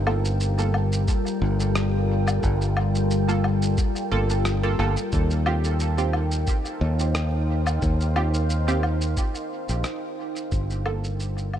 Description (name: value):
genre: ambient dub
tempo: 89 BPM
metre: 4/4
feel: swing 54% on 16ths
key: G minor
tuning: A4 = 440 Hz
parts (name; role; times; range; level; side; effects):
- deep dark ambient pad; sustained chords; 0.0-11.6 s; G3 to G5; -28 LUFS; left 1 dB; chorus, built-in reverb
- fingered electric bass; bass; 0.0-11.6 s; G1 to Eb2; -23 LUFS; equal; none
- filtered dub chord stab; stabs; 0.1-11.1 s; Bb3 to A4; -31 LUFS; right 4 dB; analog chorus, dub echo
- electronic woodblock, shaker and rim click; drums; 0.1-11.6 s; none; -32 LUFS; left 2 dB; small room ambience, dub echo
- electronic kick drum; drums; 1.1-10.7 s; none; -24 LUFS; equal; small room ambience
room: light reverb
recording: none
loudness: -21 LUFS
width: side -10 dB against mid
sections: 0.0-11.6 A section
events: fade-out 8.7-11.6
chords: 0.0 Gm7; 5.1 Eb69; 10.5 Gm7